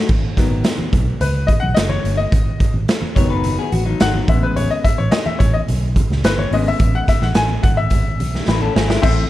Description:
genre	uptempo 1960s-style soul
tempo	107 BPM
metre	4/4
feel	straight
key	unclear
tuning	A4 = 441 Hz
part	electric guitar through a small old amp	riff	0.0-4.3, 8.5-9.2 s	F#3 to C#5	-24 LUFS	left 5 dB	none
part	vintage muted fingered electric bass	bass	0.1-9.2 s	F#1 to C#2	-20 LUFS	equal	none
part	raw garage drum kit	drums	0.1-9.2 s	crash cymbal, hi-hat, kick drum, snare drum	-18 LUFS	right 1 dB	none
part	congas	percussion	0.1-9.3 s	none	-30 LUFS	right 1 dB	none
part	bright grand piano	accompaniment	0.4-9.2 s	C#3 to G#5	-22 LUFS	left 4 dB	none
room	studio reverb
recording	dark, warm production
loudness	-14 LUFS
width	side -15 dB against mid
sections	0.0-9.0 A section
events	grand piano solo 0.0-9.0; drum fill 8.5-9.0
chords	0.1 G#m7; 4.3 Amaj7

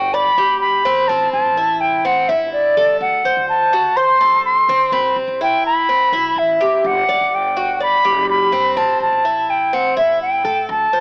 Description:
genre	latin, Cuban son and guajira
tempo	125 BPM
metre	4/4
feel	straight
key	unclear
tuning	A4 = 440 Hz
part	mellow silver concert flute	melody	0.0-11.0 s	D5 to C6	-17 LUFS	equal	cassette tape
part	Cuban tres	arpeggios	0.0-11.0 s	C4 to D5	-23 LUFS	equal	cassette tape
part	upright bass	bass	0.0-11.0 s	F#1 to D3	-37 LUFS	equal	none
room	light reverb, small room ambience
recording	home recording on cassette, AM radio sound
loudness	-16 LUFS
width	mono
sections	0.0-11.0 A section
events	none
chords	0.0 Gmaj7; 1.1 Am7; 3.0 D7; 4.9 Cmaj7; 6.8 Gmaj7; 8.8 Am7

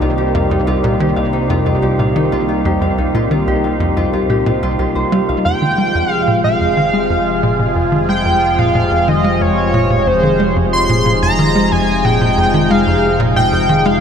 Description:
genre	ambient, sequencer-driven space music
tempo	91 BPM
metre	4/4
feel	straight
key	F minor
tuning	A4 = 435 Hz
part	sweeping resonant pad	sustained chords	0.0-14.0 s	C3 to Ab4	-17 LUFS	left 1 dB	chorus
part	Celtic harp	arpeggios	0.0-7.3 s	Eb4 to F5	-23 LUFS	moving between left 5 dB and right 2 dB	auto-pan, tape echo
part	tight sequencer bass	riff	0.0-14.0 s	C2 to Ab3	-18 LUFS	equal	analog chorus, vintage 12-bit sampler grit, tape echo
part	fat analog bass	bass	0.0-14.0 s	F1 to C2	-22 LUFS	equal	tube saturation
part	wind-like tuned noise texture	texture	0.0-14.0 s	C5 to F5	-30 LUFS	right 4 dB	built-in reverb
part	pulse-width lead	melody	5.5-14.0 s	C5 to C6	-16 LUFS	right 1 dB	chorus, tape echo
room	wet huge ambient reverb, RT60 8.6 s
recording	none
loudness	-12 LUFS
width	side -7 dB against mid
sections	0.0-5.5 A section; 5.5-14.0 B section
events	none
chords	0.0 Cm7; 5.5 Fm

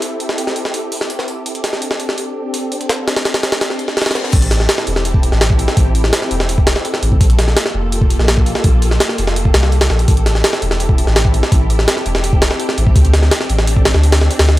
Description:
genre	drum and bass, jungle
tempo	167 BPM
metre	4/4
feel	straight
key	A phrygian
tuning	A4 = 439 Hz
part	soft string machine	sustained chords	0.0-14.6 s	Bb3 to A4	-22 LUFS	equal	ensemble chorus
part	jungle sampler-style drum kit	drums	0.0-14.6 s	crash cymbal, hi-hat, kick drum, snare drum	-14 LUFS	equal	high-pass filter on hats, high-pass filter on snare, high-pass filter on cymbals, high-pass filter on kick, high-pass filter on room
part	reverse cymbal	sound effects	3.7-4.3 s	none	-29 LUFS	left 6 dB	none
part	soft dub sub bass	bass	4.3-14.6 s	E1 to D2	-14 LUFS	equal	none
room	light reverb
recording	dry, gritty hardware recording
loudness	-12 LUFS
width	side -16 dB against mid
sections	0.0-4.3 A section; 4.3-14.6 B section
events	reverse cymbal 3.7-4.3; drop 4.3-14.6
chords	0.0 Am7; 1.5 D7sus4; 4.3 Am7; 7.2 Gm9; 10.1 Am7; 13.0 D7sus4

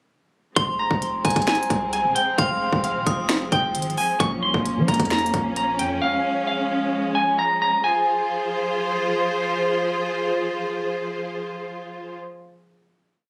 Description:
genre	hip hop, trap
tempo	132 BPM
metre	4/4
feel	half-time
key	F minor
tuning	A4 = 440 Hz
part	clean electric guitar	melody	0.6-9.2 s	F5 to Db6	-25 LUFS	equal	delay
part	metallic FM bell	second line	0.6-4.2 s	Bb5 to Eb6	-31 LUFS	equal	chorus, phaser, delay
part	clear symphonic string section	sustained chords	0.6-12.2 s	F3 to C5	-28 LUFS	equal	none
part	long sustained 808-style bass	bass	0.6-6.0 s	Eb1 to F3	-32 LUFS	equal	none
part	trap drum kit	drums	0.6-5.9 s	finger snaps, hi-hat, kick drum, snare drum	-26 LUFS	equal	none
room	light reverb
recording	recorded on a phone in the room, club reverb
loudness	-23 LUFS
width	mono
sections	0.6-7.8 hook; 7.8-11.5 final chord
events	none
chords	0.6 Fm; 4.2 Bbm; 7.8 Fm

